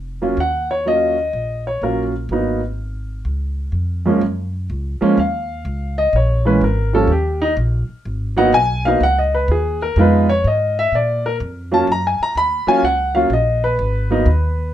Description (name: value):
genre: jazz piano trio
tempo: 125 BPM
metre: 4/4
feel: swing 66% on 8ths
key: Eb minor, F# major from 4.2 s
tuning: A4 = 440 Hz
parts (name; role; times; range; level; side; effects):
- upright bass; bass; 0.0-14.7 s; F1 to A#2; -20 LUFS; equal; none
- warm concert grand piano; melody; 0.2-14.7 s; Gb2 to B5; -16 LUFS; equal; none
room: light reverb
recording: minimal, uncompressed stereo recording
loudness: -15 LUFS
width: side -11 dB against mid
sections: 0.0-4.2 A section; 4.2-14.7 B section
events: grand piano solo 4.2-14.7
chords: 0.4 Ebm9; 2.3 Abm7; 3.3 Db; 4.2 F#maj7(no3); 6.1 A#m7; 7.1 D#5; 8.1 G#m9; 10.0 Fm7b5; 10.9 A#5; 11.9 D#m7; 13.8 G#m